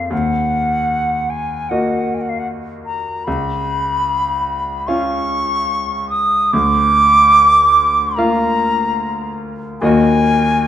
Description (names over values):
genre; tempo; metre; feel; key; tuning
classical, romantic duo for flute and grand piano; 74 BPM; 4/4; rubato; Eb minor; A4 = 436 Hz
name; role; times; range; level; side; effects
silver concert flute; melody; 0.0-10.7 s; F5 to Eb6; -15 LUFS; right 1 dB; none
bright grand piano; accompaniment; 0.0-10.7 s; Db2 to F5; -19 LUFS; left 1 dB; none
room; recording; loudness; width
moderate recital hall reverb, RT60 1.6 s; none; -13 LUFS; side -10 dB against mid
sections
0.0-10.7 A section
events
none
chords
0.1 Ebm; 3.3 Db; 6.5 Bb/D; 9.8 Ebm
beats
| 0.12 0.91 1.70 2.48 | 3.27 4.08 4.89 5.69 | 6.53 7.36 8.17 8.99 | 9.81 10.62